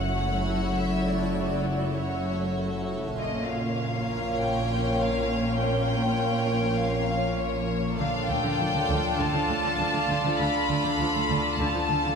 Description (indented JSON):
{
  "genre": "cinematic",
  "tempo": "100 BPM",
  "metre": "4/4",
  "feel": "straight",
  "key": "unclear",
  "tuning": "A4 = 438 Hz",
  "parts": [
    { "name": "warm studio violin section", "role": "melody", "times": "0.0-12.2 s", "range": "C#5 to B5", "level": "-30 LUFS", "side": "left 3 dB", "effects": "none" },
    { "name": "clear studio violin section", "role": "second line", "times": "0.0-12.2 s", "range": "E#4 to C#5", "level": "-33 LUFS", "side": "equal", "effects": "none" },
    { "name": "rich studio viola section", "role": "accompaniment", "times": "0.0-12.2 s", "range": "D3 to E4", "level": "-32 LUFS", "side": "equal", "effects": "none" },
    { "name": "evolving wavetable pad", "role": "sustained chords", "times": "0.0-12.2 s", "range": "A4 to F#5", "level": "-33 LUFS", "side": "right 1 dB", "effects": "phaser, built-in reverb" },
    { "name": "dark studio double bass section", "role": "bass", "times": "0.0-11.9 s", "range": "F#1 to D2", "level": "-34 LUFS", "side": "right 3 dB", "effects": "none" },
    { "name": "warm chamber cello section", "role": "bass", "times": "0.0-12.1 s", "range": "F#2 to D3", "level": "-32 LUFS", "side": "right 2 dB", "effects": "none" },
    { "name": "organ-like drone", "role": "drone", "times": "0.0-12.2 s", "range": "F#1 to D2", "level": "-33 LUFS", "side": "left 1 dB", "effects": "ensemble chorus, built-in reverb" },
    { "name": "warm baby grand piano", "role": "texture", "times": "0.0-8.0 s", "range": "C#5 to E5", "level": "-40 LUFS", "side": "left 3 dB", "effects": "none" },
    { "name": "rich studio violin section", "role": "texture", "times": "8.0-12.2 s", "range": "F6 to A6", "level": "-39 LUFS", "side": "equal", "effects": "none" }
  ],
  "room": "wet concert hall reverb, RT60 2.5 s",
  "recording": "none",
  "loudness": "-24 LUFS",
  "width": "side -6 dB against mid",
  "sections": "0.0-12.2 A section",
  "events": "none",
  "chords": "0.0 F#m7; 3.2 A#m; 8.0 Dm",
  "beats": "0.19 | 0.79 1.39 1.99 2.59 | 3.19 3.79 4.39 4.99 | 5.59 6.19 6.79 7.39 | 7.99 8.59 9.19 9.79 | 10.39 10.99 11.59"
}